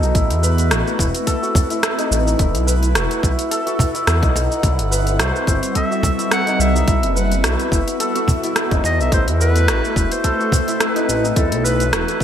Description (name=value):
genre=organic downtempo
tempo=107 BPM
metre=4/4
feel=swing 55% on 16ths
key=E harmonic minor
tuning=A4 = 440 Hz
part: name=ethereal airy pad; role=sustained chords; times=0.0-12.2 s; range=E3 to F#5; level=-24 LUFS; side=right 1 dB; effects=ensemble chorus, built-in reverb, sidechain pumping
part: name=santur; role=arpeggios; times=0.0-12.2 s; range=D#4 to B4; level=-22 LUFS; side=left 2 dB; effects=digital delay
part: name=smooth synth bass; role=bass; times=0.0-12.2 s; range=E1 to E2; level=-19 LUFS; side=equal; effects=sidechain pumping
part: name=organic electronic drum kit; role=drums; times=0.0-12.2 s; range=hi-hat, rim click, shaker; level=-22 LUFS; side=right 1 dB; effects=gated reverb
part: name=electronic kick drum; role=drums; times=0.1-12.2 s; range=none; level=-18 LUFS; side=equal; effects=none
part: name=cajon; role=percussion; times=1.6-11.5 s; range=none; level=-21 LUFS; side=right 1 dB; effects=none
part: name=clear clarinet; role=melody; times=5.2-12.2 s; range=A4 to F#5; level=-23 LUFS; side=equal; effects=digital delay
room=moderate lush hall reverb, RT60 2.3 s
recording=bright 1980s-style digital production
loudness=-15 LUFS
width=side -9 dB against mid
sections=0.0-12.2 A section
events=none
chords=0.1 Am; 2.4 Esus2; 4.6 Cmaj7; 6.9 B7sus4; 9.1 Am; 11.4 Esus2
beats=| 0.15 0.71 1.27 1.83 | 2.39 2.95 3.51 4.07 | 4.63 5.20 5.76 6.32 | 6.88 7.44 8.00 8.56 | 9.12 9.68 10.24 10.80 | 11.36 11.93